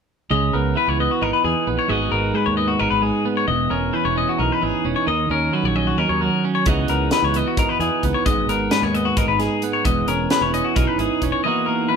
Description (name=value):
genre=math rock and midwest emo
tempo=264 BPM (eighths)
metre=7/8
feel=straight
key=unclear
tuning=A4 = 441 Hz
part: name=twelve-string electric guitar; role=accompaniment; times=0.3-12.0 s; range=E2 to F#4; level=-21 LUFS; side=right 4 dB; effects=none
part: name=twangy electric guitar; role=arpeggios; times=0.3-12.0 s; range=F#4 to D#5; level=-22 LUFS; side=left 6 dB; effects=none
part: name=fingered electric bass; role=bass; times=0.3-11.3 s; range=E1 to E2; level=-25 LUFS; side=equal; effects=none
part: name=crisp fusion drum kit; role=drums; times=6.7-11.3 s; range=hi-hat, kick drum, snare drum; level=-23 LUFS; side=equal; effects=none
room=moderate studio reverb, RT60 0.7 s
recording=band playing live in one room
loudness=-17 LUFS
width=side -6 dB against mid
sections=0.3-12.0 A section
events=none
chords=0.3 C#m9; 1.9 G#m9; 3.5 Emaj13; 5.1 D#m7; 6.7 C#m11; 8.3 G#m9; 9.8 Emaj13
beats=| 0.31 0.54 0.76 0.99 1.22 1.44 1.67 | 1.90 2.12 2.35 2.58 2.80 3.03 3.26 | 3.48 3.71 3.94 4.17 4.39 4.62 4.85 | 5.08 5.30 5.53 5.76 5.98 6.21 6.44 | 6.67 6.89 7.12 7.35 7.58 7.80 8.03 | 8.26 8.48 8.71 8.94 9.17 9.39 9.62 | 9.85 10.08 10.30 10.53 10.76 10.99 11.22 | 11.44 11.67 11.90